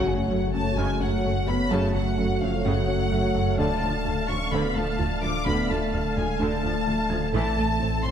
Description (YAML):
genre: cinematic, hybrid orchestral and electronic film score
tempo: 128 BPM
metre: 4/4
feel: straight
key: F# harmonic minor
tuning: A4 = 442 Hz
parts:
  - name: rich symphonic violin section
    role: melody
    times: 0.0-8.1 s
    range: E#5 to D6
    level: -33 LUFS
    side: left 2 dB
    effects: none
  - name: rich symphonic violin section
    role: second line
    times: 0.0-8.1 s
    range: E#5 to D6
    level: -33 LUFS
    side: left 4 dB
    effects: none
  - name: rich symphonic viola section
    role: accompaniment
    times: 0.0-8.1 s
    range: C#3 to F5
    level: -32 LUFS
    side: right 1 dB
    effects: none
  - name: dark analog pad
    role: sustained chords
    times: 0.0-8.1 s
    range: C#3 to E5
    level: -31 LUFS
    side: left 1 dB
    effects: chorus
  - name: mellow French horn section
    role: sustained chords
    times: 0.0-8.1 s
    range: E#3 to D4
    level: -32 LUFS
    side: left 3 dB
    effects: none
  - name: mellow trombone section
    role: sustained chords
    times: 0.0-8.1 s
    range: D3 to C4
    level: -33 LUFS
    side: right 4 dB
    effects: none
  - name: punchy sub bass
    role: bass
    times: 0.0-8.1 s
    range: D1 to A1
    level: -31 LUFS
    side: equal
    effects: none
  - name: rich symphonic cello section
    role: bass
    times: 0.0-8.1 s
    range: D2 to A2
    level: -33 LUFS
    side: right 2 dB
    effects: none
  - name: rich symphonic double bass section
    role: bass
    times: 0.0-8.1 s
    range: F#1 to D2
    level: -31 LUFS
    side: right 2 dB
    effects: none
  - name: impact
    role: sound effects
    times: 0.0-1.7 s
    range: none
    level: -37 LUFS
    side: equal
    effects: none
  - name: tight sequenced synth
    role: arpeggios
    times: 0.1-8.1 s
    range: D3 to A4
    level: -36 LUFS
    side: right 1 dB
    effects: none
  - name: felt-muted upright piano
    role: texture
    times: 0.1-8.1 s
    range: D4 to G#6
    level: -40 LUFS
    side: left 3 dB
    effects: none
room: moderate scoring stage reverb, RT60 1.7 s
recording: none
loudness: -22 LUFS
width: side -8 dB against mid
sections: 0.0-8.1 A section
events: band accent 0.0-0.3; impact 0.0-1.7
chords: 0.0 F#m; 3.6 Dm; 7.3 Am